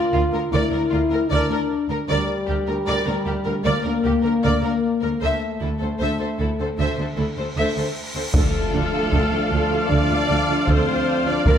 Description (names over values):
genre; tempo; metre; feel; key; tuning
cinematic, epic orchestral film score; 77 BPM; 4/4; straight; D minor; A4 = 439 Hz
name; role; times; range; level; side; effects
rich symphonic violin section; second line; 0.0-11.6 s; E4 to D5; -31 LUFS; left 1 dB; none
mellow French horn section; sustained chords; 0.0-11.6 s; G3 to F4; -24 LUFS; left 3 dB; none
clear symphonic violin section; melody; 0.1-11.6 s; F4 to E5; -28 LUFS; left 3 dB; none
warm symphonic viola section; accompaniment; 0.1-11.6 s; D4 to F5; -28 LUFS; right 1 dB; none
clear symphonic cello section; bass; 0.1-11.5 s; D2; -28 LUFS; right 3 dB; none
clear symphonic double bass section; bass; 0.1-11.5 s; D2; -26 LUFS; right 3 dB; none
cymbal swell and impact; sound effects; 7.1-11.5 s; none; -32 LUFS; equal; none
clear trombone section; sustained chords; 8.3-11.6 s; F3 to Bb3; -29 LUFS; right 4 dB; none
rich symphonic string section; sustained chords; 8.3-11.6 s; D4 to D5; -30 LUFS; left 2 dB; none
warm tuba; bass; 8.3-11.5 s; D2; -29 LUFS; right 3 dB; none
solo taiko drums; drums; 8.3-11.6 s; none; -20 LUFS; equal; none
room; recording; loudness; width
wet scoring stage reverb, RT60 1.6 s; none; -19 LUFS; side -8 dB against mid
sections
0.0-8.3 A section; 8.3-11.6 A section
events
cymbal swell 7.1-8.3; impact 8.3-11.5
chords
0.0 Bb/D; 2.1 Gm/D; 5.2 Am/D; 8.3 Dm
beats
0.53 1.31 | 2.09 2.87 3.65 4.44 | 5.22 6.00 6.78 7.56 | 8.35 9.13 9.91 10.69 | 11.47